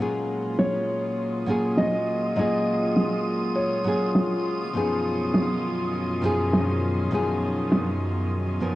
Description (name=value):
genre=sunset chillout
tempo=101 BPM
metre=4/4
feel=straight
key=F# major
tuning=A4 = 440 Hz
part: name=nylon-string guitar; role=accompaniment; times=0.0-8.8 s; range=F#2 to A#4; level=-26 LUFS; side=left 1 dB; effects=auto-pan, cassette tape, analog delay, shimmer reverb
part: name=warm chamber string section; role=sustained chords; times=0.0-8.8 s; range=F#2 to E#4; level=-27 LUFS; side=left 1 dB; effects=cassette tape, shimmer reverb
part: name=wind-like tuned noise texture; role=texture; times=0.9-8.8 s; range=D#6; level=-36 LUFS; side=right 3 dB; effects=built-in reverb, cassette tape, shimmer reverb
part: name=dark baby grand piano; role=melody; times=0.6-4.4 s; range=C#5 to D#5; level=-29 LUFS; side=equal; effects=analog delay, shimmer reverb
part: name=electronic snare drum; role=drums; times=0.6-7.8 s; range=none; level=-23 LUFS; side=equal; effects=low-pass filter on perc, low-pass filter on snare, low-pass filter on room
room=wet small room reverb, RT60 0.5 s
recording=home recording on cassette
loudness=-22 LUFS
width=side -16 dB against mid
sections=0.0-8.8 A section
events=none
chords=0.0 F#maj9; 4.8 C#9/F#